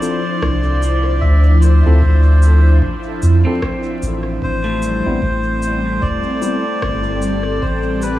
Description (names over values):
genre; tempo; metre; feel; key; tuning
ambient dub; 75 BPM; 4/4; swing 60% on 16ths; D minor; A4 = 441 Hz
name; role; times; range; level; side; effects
melodica; melody; 0.0-8.2 s; B4 to E5; -23 LUFS; left 1 dB; vintage 12-bit sampler grit, dub echo
airy breathy pad; sustained chords; 0.0-8.2 s; F3 to C5; -22 LUFS; left 1 dB; chorus, phaser
pedal steel guitar; arpeggios; 0.0-7.0 s; A3 to A4; -27 LUFS; equal; dub echo
tine electric piano; stabs; 0.0-6.6 s; G3 to A4; -27 LUFS; left 2 dB; medium stereo tremolo, dub echo
electronic cabasa and rim click; drums; 0.0-8.2 s; none; -32 LUFS; left 1 dB; dub echo
soft dub sub bass; bass; 0.4-8.2 s; E1 to F2; -14 LUFS; equal; none
electronic kick drum; drums; 0.4-7.8 s; none; -24 LUFS; equal; none
room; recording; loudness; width
light reverb; vinyl crackle, small room ambience; -13 LUFS; side -15 dB against mid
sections
0.0-8.2 A section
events
none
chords
0.0 Dm9; 4.4 Am7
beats
0.42 | 1.22 2.02 2.82 3.62 | 4.42 5.22 6.02 6.82 | 7.62